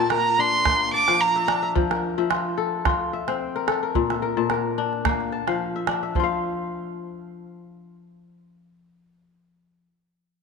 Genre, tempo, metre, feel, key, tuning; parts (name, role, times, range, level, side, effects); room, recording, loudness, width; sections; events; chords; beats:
west african traditional, West African string and xylophone music; 109 BPM; 4/4; swing 55% on 16ths; A4 = 439 Hz
rich violin; melody; 0.0-1.6 s; A5 to D6; -20 LUFS; right 3 dB
kora; arpeggios; 0.0-9.9 s; Bb2 to A5; -24 LUFS; left 7 dB
calabash; percussion; 0.1-6.4 s; -27 LUFS; right 7 dB
wet plate reverb, RT60 2.6 s; 1960s-style stereo with parts hard left and right; -21 LUFS; side -5 dB against mid
0.0-6.2 A section; 6.2-8.4 B section
0.0 Bb; 1.7 F; 3.9 Bb; 6.2 N.C.
0.10 0.65 1.20 | 1.75 2.30 2.85 3.40 | 3.95 4.50 5.05 5.60 | 6.15 6.70 7.25 7.80